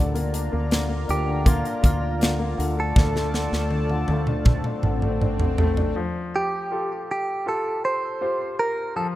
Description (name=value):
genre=pop ballad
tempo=80 BPM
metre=4/4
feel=straight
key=unclear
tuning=A4 = 440 Hz
part: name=clear concert grand piano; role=accompaniment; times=0.0-9.2 s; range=D3 to C5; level=-28 LUFS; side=left 3 dB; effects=none
part: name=chorused pulse-width pad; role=sustained chords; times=0.0-5.9 s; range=F4 to Bb5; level=-33 LUFS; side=equal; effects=none
part: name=fretless electric bass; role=bass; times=0.0-5.9 s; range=A1 to D2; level=-26 LUFS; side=equal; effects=lush chorus
part: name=swell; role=sound effects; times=4.4-6.0 s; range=none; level=-36 LUFS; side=left 4 dB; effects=none
part: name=modern studio drum kit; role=drums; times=0.2-5.9 s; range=hi-hat, kick drum, snare drum, toms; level=-22 LUFS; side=equal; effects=none
part: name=direct-recorded clean electric guitar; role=melody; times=1.1-9.1 s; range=F4 to C5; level=-26 LUFS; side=right 2 dB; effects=phaser
room=small room ambience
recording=rough home demo mix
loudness=-21 LUFS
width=side -15 dB against mid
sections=0.0-6.0 A section; 6.0-9.2 B section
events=drum fill 3.0-6.0; swell 4.4-6.0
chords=0.0 Bb/D; 2.6 Dm; 6.0 Fadd9